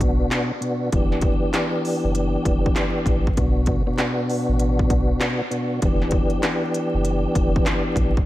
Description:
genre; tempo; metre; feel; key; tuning
hip hop, boom-bap hip-hop; 98 BPM; 4/4; swing 63% on 16ths; unclear; A4 = 440 Hz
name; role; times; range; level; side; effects
mellow tonewheel organ; accompaniment; 0.0-8.2 s; B2 to G4; -22 LUFS; left 1 dB; chorus vibrato, fast rotary speaker, cassette tape, high-pass filter, low-pass filter
soft dub sub bass; bass; 0.0-8.2 s; E1 to B1; -24 LUFS; equal; none
industrial drum kit; drums; 0.0-8.3 s; handclaps, hi-hat, kick drum, snare drum; -22 LUFS; equal; none
room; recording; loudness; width
light reverb; vinyl crackle; -19 LUFS; side -15 dB against mid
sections
0.0-8.3 A section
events
none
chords
0.0 Bm; 0.9 Em7; 3.4 Bm; 5.8 Em7

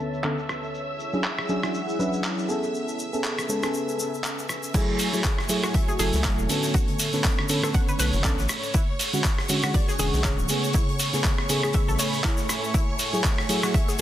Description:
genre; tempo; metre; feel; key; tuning
deep house; 120 BPM; 4/4; swing 56% on 16ths; F# minor; A4 = 440 Hz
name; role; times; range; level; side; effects
dark analog pad; sustained chords; 0.0-14.0 s; D3 to E6; -34 LUFS; right 1 dB; chorus, sidechain pumping
mellow FM electric piano; stabs; 0.0-14.0 s; C#3 to B4; -28 LUFS; equal; chorus, sidechain pumping, low-pass filter, tape echo
string machine, violins; texture; 0.0-14.0 s; C#5 to E6; -35 LUFS; equal; ensemble chorus, sidechain pumping
egg shaker; percussion; 0.1-14.0 s; none; -33 LUFS; left 2 dB; none
dusty soul sampler-style drum kit; drums; 0.2-13.7 s; crash cymbal, handclaps, hi-hat, rim click; -29 LUFS; right 1 dB; soft clipping on snare
analog pluck; arpeggios; 4.7-14.0 s; E4 to F#5; -34 LUFS; equal; chorus, sidechain pumping, tape echo
electronic kick drum; drums; 4.7-13.9 s; none; -24 LUFS; equal; overdrive
loose indie drum kit; drums; 4.7-14.0 s; hi-hat, snare drum; -38 LUFS; left 4 dB; none
rubbery square bass; bass; 6.0-12.0 s; D1 to C#2; -26 LUFS; equal; sidechain pumping
room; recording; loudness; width
light reverb, digital ambience; dense, heavily limited modern master, low-pass filter; -22 LUFS; side -12 dB against mid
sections
0.0-4.7 A section; 4.7-14.0 B section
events
filter sweep 0.0-4.7; drop 4.7-14.0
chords
0.0 Bm9; 0.7 E13; 2.7 Amaj9; 4.7 F#m9; 6.7 Bm9; 8.7 E13; 10.7 Amaj9; 12.7 F#m9

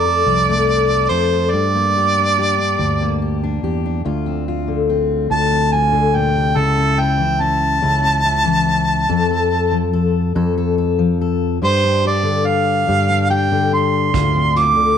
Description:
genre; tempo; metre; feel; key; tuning
acoustic folk duo or small band; 48 BPM (dotted quarters); 6/8; straight; D minor; A4 = 440 Hz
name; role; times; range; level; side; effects
warm harmonica; melody; 0.0-15.0 s; A4 to D6; -17 LUFS; right 2 dB; slapback echo
fingerpicked steel-string acoustic guitar; accompaniment; 0.0-15.0 s; D2 to A4; -19 LUFS; left 7 dB; none
fingered electric bass; bass; 0.0-15.0 s; C2 to G2; -20 LUFS; right 2 dB; none
vintage brush drum kit; drums; 14.1-14.8 s; hi-hat, kick drum; -23 LUFS; right 4 dB; none
room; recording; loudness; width
light reverb, small room ambience; 1960s-style stereo; -14 LUFS; side -8 dB against mid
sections
0.0-4.1 A section; 4.1-15.0 B section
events
harmonica solo 4.1-15.0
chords
0.0 F; 1.5 Gm; 4.1 Dm7; 6.6 A/C#; 9.1 F; 11.6 G5; 14.1 Dm7

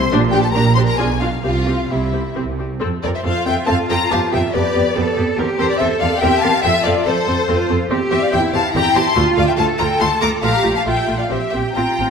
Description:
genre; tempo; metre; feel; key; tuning
quick classical-period movement for string orchestra; 129-144 BPM; 3/4; rubato; F major; A4 = 440 Hz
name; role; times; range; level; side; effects
rich studio violin section; melody; 0.0-12.1 s; C5 to D6; -21 LUFS; left 5 dB; none
rich studio violin section; second line; 0.0-12.1 s; E4 to Bb5; -21 LUFS; left 3 dB; none
rich studio cello section; bass; 0.0-12.1 s; Bb2 to A4; -22 LUFS; right 4 dB; none
rich studio double bass section; bass; 0.0-12.1 s; A1 to F2; -22 LUFS; right 3 dB; none
warm studio viola section; accompaniment; 0.1-12.1 s; A3 to Bb4; -22 LUFS; equal; none
room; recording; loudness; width
wet scoring stage reverb, RT60 1.6 s; none; -14 LUFS; side -6 dB against mid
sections
0.0-2.8 A section; 2.8-12.1 B section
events
none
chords
0.1 Gm/Bb; 1.0 Bdim7; 1.4 C; 2.8 F; 4.1 G7/F; 5.4 C7/E; 6.6 F; 7.9 C/E; 9.2 Dm; 10.4 Bb5; 11.3 C7/Bb

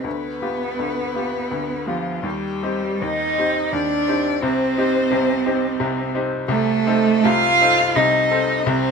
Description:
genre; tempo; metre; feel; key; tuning
classical, slow romantic movement for piano trio; 74-89 BPM; 3/4; rubato; unclear; A4 = 440 Hz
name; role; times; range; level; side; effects
dark violin; melody; 0.0-8.9 s; F4 to F5; -25 LUFS; left 7 dB; none
rich cello; second line; 0.0-8.9 s; F3 to F4; -20 LUFS; right 5 dB; none
bright grand piano; accompaniment; 0.0-8.9 s; C2 to A4; -23 LUFS; left 3 dB; none
room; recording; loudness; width
moderate studio reverb, RT60 0.7 s; minimal, uncompressed stereo recording; -17 LUFS; side -5 dB against mid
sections
0.0-8.9 A section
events
none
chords
0.1 G7/D; 2.2 Cm/Eb; 4.4 Cm; 6.5 Adim/C

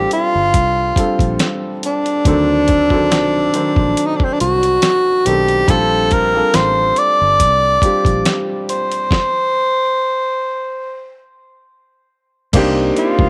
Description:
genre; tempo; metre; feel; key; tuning
R&B, neo-soul; 70 BPM; 4/4; swing 54% on 16ths; Bb major; A4 = 438 Hz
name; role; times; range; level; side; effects
breathy tenor saxophone; melody; 0.0-13.3 s; C4 to D5; -17 LUFS; equal; none
warm upright piano; accompaniment; 0.0-13.3 s; Eb3 to C5; -22 LUFS; equal; none
fingered electric bass; bass; 0.0-13.3 s; G1 to D2; -24 LUFS; equal; none
dusty soul sampler-style drum kit; drums; 0.1-13.3 s; crash cymbal, hi-hat, kick drum, snare drum; -20 LUFS; equal; none
congas; percussion; 12.5-13.3 s; none; -30 LUFS; equal; none
room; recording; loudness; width
light reverb; none; -15 LUFS; mono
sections
0.0-12.5 A section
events
stop 9.1-12.5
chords
0.0 Bbmaj13 (rootless); 2.3 D7b9; 5.7 Bbmaj13; 9.1 N.C.; 12.5 Cm7

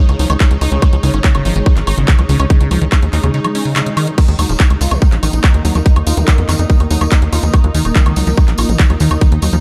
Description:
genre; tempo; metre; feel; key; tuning
psychedelic trance; 143 BPM; 4/4; straight; unclear; A4 = 438 Hz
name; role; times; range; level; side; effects
pulsing gated texture; sustained chords; 0.0-9.6 s; Eb4; -28 LUFS; equal; chorus, built-in reverb, sidechain pumping
liquid acid bass; riff; 0.0-9.6 s; Db3 to F4; -22 LUFS; equal; phaser, sidechain pumping, tape echo
ethereal airy pad; texture; 0.0-9.6 s; Ab3 to Eb6; -27 LUFS; equal; ensemble chorus, built-in reverb, tremolo, sidechain pumping
tight sequencer bass; bass; 0.1-9.6 s; Eb1 to F2; -17 LUFS; equal; none
drum and bass drum kit; drums; 0.1-9.6 s; crash cymbal, handclaps, hi-hat, woodblock; -23 LUFS; equal; overdrive, small room ambience
electronic kick drum; drums; 0.4-9.3 s; none; -12 LUFS; equal; overdrive, small room ambience
swell; sound effects; 3.5-4.2 s; none; -31 LUFS; equal; none
tambourine; percussion; 4.2-9.6 s; none; -31 LUFS; equal; none
formant-sweep wobble bass; second line; 6.2-6.7 s; Bb3 to Eb4; -32 LUFS; equal; none
room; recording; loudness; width
light reverb; dark, warm production; -13 LUFS; mono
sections
0.0-9.6 A section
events
swell 3.5-4.2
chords
0.0 Db5; 4.2 Eb5

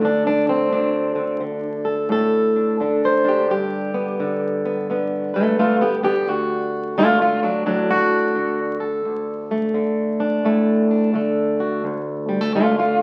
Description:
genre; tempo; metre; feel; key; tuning
acoustic country blues, solo or duo; 86 BPM; 4/4; swing 64% on 8ths; D mixolydian; A4 = 440 Hz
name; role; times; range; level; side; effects
fingerpicked plugged-in swing-style acoustic guitar; solo; 0.0-13.0 s; D2 to C5; -20 LUFS; equal; none
room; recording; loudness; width
wet studio reverb, RT60 0.9 s; very old 78 rpm record, vinyl crackle; -20 LUFS; mono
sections
0.0-13.0 A section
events
none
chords
0.0 D5; 3.5 G; 6.3 D

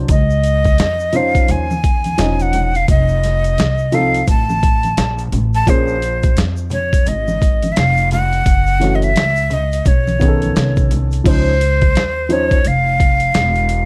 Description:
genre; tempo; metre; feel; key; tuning
hip hop, jazz-hop; 86 BPM; 4/4; swing 61% on 16ths; Db major; A4 = 442 Hz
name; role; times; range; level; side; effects
dark concert grand piano; accompaniment; 0.0-12.6 s; Eb3 to Eb5; -22 LUFS; equal; none
upright bass; bass; 0.0-13.9 s; Fb1 to F2; -20 LUFS; equal; none
breathy bright jazz flute; melody; 0.1-13.9 s; C5 to A5; -20 LUFS; equal; none
boom bap sampler-style drum kit; drums; 0.1-13.9 s; crash cymbal, hi-hat, kick drum, snare drum; -18 LUFS; equal; none
egg shaker and congas; percussion; 0.1-11.2 s; none; -29 LUFS; equal; none
room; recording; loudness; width
small room ambience; dark, warm production; -15 LUFS; mono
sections
0.0-11.3 A section; 11.3-13.9 A section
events
none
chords
0.1 Dbmaj9; 2.9 F7; 5.7 Bb7(no3); 8.5 Gbm7; 9.9 Cb9; 11.3 Dbmaj9

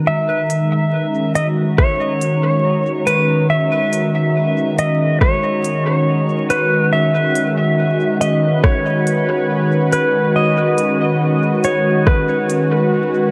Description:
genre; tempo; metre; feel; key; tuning
ambient dub; 70 BPM; 4/4; swing 55% on 16ths; G# minor; A4 = 436 Hz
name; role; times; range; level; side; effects
warm analog pad; sustained chords; 0.0-13.3 s; D#3 to A#5; -19 LUFS; equal; chorus
clean lap steel guitar; melody; 0.1-13.3 s; B4 to E5; -20 LUFS; equal; dub echo
organic electronic drum kit; drums; 0.5-12.7 s; hi-hat, rim click; -28 LUFS; equal; overdrive, small room ambience, dub echo
electronic kick drum; drums; 1.8-12.3 s; none; -17 LUFS; equal; overdrive, small room ambience
room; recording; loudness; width
moderate echo chamber reverb, RT60 2.2 s; dark, warm production, vinyl crackle; -16 LUFS; mono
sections
0.1-13.3 A section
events
none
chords
0.0 F#69/D#; 6.9 G#m7

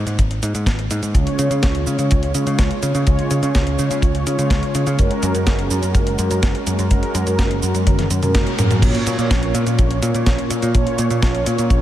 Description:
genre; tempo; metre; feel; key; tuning
italo disco; 125 BPM; 4/4; straight; Bb minor; A4 = 442 Hz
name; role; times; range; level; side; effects
picked electric bass; bass; 0.0-11.8 s; Gb1 to Db3; -20 LUFS; equal; analog delay
clean 12-bit digital drum machine; drums; 0.1-11.8 s; cabasa, crash cymbal, hi-hat, snare drum, toms; -24 LUFS; equal; none
kick drum; drums; 0.2-11.8 s; none; -18 LUFS; equal; none
mellow synth brass; stabs; 1.1-11.8 s; Bb2 to Db5; -21 LUFS; right 1 dB; chorus, analog delay
room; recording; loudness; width
moderate huge ambient reverb, RT60 7.9 s; dreamy mix soaked in reverb; -16 LUFS; side -12 dB against mid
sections
0.0-8.8 A section; 8.8-11.8 B section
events
drum fill 7.9-8.8; band accent 8.3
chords
0.0 N.C.; 1.1 Db; 5.0 Gbadd9; 8.8 Bbm

